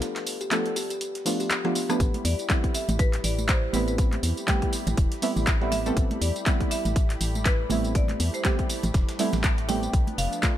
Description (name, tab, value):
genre	deep house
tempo	121 BPM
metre	4/4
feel	swing 57% on 16ths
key	A minor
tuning	A4 = 440 Hz
part	kalimba	melody	0.0-1.8 s	G4 to A4	-35 LUFS	left 3 dB	ping-pong delay
part	deep mellow chord stab	stabs	0.0-10.6 s	F3 to B4	-29 LUFS	right 2 dB	chorus, cassette tape, sidechain pumping, tape echo
part	dusty soul sampler-style drum kit	drums	0.0-10.6 s	hi-hat, snare drum	-42 LUFS	equal	none
part	punchy analog drum machine	drums	0.0-10.5 s	handclaps, hi-hat, rim click, tambourine	-30 LUFS	equal	none
part	warm analog pad	sustained chords	2.0-10.6 s	F3 to B5	-36 LUFS	equal	wide subtle chorus, sidechain pumping
part	organ-like FM bass	bass	2.0-10.3 s	E1 to E2	-28 LUFS	equal	sidechain pumping
part	electronic kick drum	drums	2.0-10.5 s	none	-24 LUFS	equal	none
part	congas	percussion	2.1-10.5 s	none	-34 LUFS	right 2 dB	sidechain pumping on perc
part	marimba with medium hard mallets	melody	2.2-10.6 s	B4 to G5	-34 LUFS	left 1 dB	ping-pong delay
room	digital ambience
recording	none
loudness	-22 LUFS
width	side -12 dB against mid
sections	0.0-10.6 A section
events	break 0.0-2.0; drum fill 1.5-2.0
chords	0.0 Bm7b5; 2.0 Am9; 9.9 Bm7b5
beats	| 0.02 0.51 1.01 1.50 | 2.00 2.50 2.99 3.49 | 3.98 4.48 4.98 5.47 | 5.97 6.46 6.96 7.46 | 7.95 8.45 8.94 9.44 | 9.94 10.43